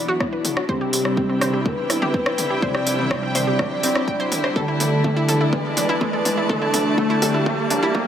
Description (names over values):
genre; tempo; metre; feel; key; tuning
melodic techno; 124 BPM; 4/4; straight; unclear; A4 = 439 Hz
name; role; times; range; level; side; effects
wide unison lead; melody; 0.0-8.1 s; E4 to D5; -26 LUFS; equal; lush chorus, cassette tape, tape echo
dark chamber string section; sustained chords; 0.0-8.1 s; B2 to E4; -30 LUFS; equal; sidechain pumping, low-pass filter
analog pluck; arpeggios; 0.0-8.0 s; A3 to G5; -26 LUFS; equal; chorus, sidechain pumping, digital delay
tight sequencer bass; bass; 0.0-8.0 s; F#1 to B1; -36 LUFS; equal; none
riser; sound effects; 1.2-8.1 s; none; -28 LUFS; equal; none
warm studio string section; texture; 0.0-8.1 s; C4 to B5; -28 LUFS; equal; sidechain pumping
deep house drum kit; drums; 0.2-8.0 s; hi-hat, rim click, toms; -26 LUFS; equal; high-pass filter on snare, high-pass filter on toms, high-pass filter on hats
electronic kick drum; drums; 0.2-8.0 s; none; -26 LUFS; equal; high-pass filter on kick
brassy analog pad; stabs; 0.7-7.4 s; C3 to D4; -25 LUFS; equal; chorus, sidechain pumping, digital delay
room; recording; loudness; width
moderate lush hall reverb, RT60 2.1 s; high-pass filter; -18 LUFS; side -9 dB against mid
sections
0.0-8.1 A section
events
build-up 0.0-8.1; drum fill 0.0-8.1; filter sweep on analog synth lead 0.0-8.1; filter sweep on analog synth pad 0.0-8.1; riser 1.2-8.1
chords
0.0 Bm; 0.7 C/B; 4.6 Amadd9/B